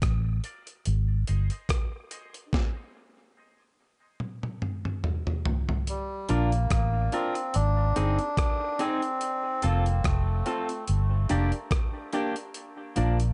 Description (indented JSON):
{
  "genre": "dub reggae",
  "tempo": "72 BPM",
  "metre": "4/4",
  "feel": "swing 55% on 16ths",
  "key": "Bb major",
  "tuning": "A4 = 440 Hz",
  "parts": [
    { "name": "vintage muted fingered electric bass", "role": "bass", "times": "0.0-13.3 s", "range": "F1 to Bb1", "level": "-27 LUFS", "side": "equal", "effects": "none" },
    { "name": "breakbeat sampler-style drum kit", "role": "drums", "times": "0.0-13.3 s", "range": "hi-hat, kick drum, rim click, snare drum, toms", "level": "-31 LUFS", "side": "equal", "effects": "none" },
    { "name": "clear upright piano", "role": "stabs", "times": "0.4-13.2 s", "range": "C4 to Eb5", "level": "-38 LUFS", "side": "equal", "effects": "high-pass filter, dub echo" },
    { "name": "melodica", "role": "melody", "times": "5.9-10.8 s", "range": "G3 to D4", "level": "-34 LUFS", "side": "equal", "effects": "dub echo" },
    { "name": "clean electric guitar", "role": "accompaniment", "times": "6.3-13.2 s", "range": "F3 to Bb4", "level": "-37 LUFS", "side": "equal", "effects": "high-pass filter, dub echo" }
  ],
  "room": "light reverb",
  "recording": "dark, warm production, nothing above 10.8 kHz",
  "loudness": "-28 LUFS",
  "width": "mono",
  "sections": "0.0-5.9 A section; 5.9-13.3 B section",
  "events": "break 0.0-5.9; stop 2.5-5.9; drum fill 4.2-5.9",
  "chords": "0.0 Bb; 0.9 Ab; 2.5 N.C.; 5.9 Bb; 7.5 Ab; 9.2 F; 10.9 Gm; 12.5 Bb"
}